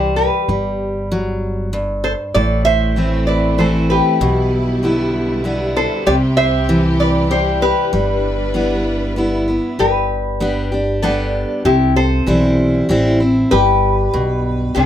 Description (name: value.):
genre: honky-tonk and classic country.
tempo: 97 BPM.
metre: 3/4.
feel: straight.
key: G major.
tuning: A4 = 440 Hz.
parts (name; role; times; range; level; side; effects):
lap resonator guitar; melody; 0.0-14.9 s; D4 to E5; -18 LUFS; left 1 dB; none.
picked steel-string acoustic guitar; accompaniment; 0.0-14.9 s; G2 to G4; -18 LUFS; equal; none.
upright bass; bass; 0.0-14.9 s; G1 to C2; -20 LUFS; equal; none.
rich studio string section; sustained chords; 2.3-9.8 s; B2 to B4; -25 LUFS; equal; none.
room: moderate studio reverb, RT60 0.6 s.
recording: none.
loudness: -14 LUFS.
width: side -10 dB against mid.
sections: 0.0-9.8 A section; 9.8-14.9 B section.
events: none.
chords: 0.5 G; 2.3 Am; 4.2 G6/B; 6.1 C; 7.9 G6; 9.8 G; 11.7 C; 13.5 G.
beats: | 0.49 1.11 1.73 | 2.35 2.97 3.59 | 4.21 4.83 5.45 | 6.07 6.69 7.31 | 7.93 8.55 9.17 | 9.79 10.41 11.03 | 11.65 12.27 12.89 | 13.52 14.14 14.76.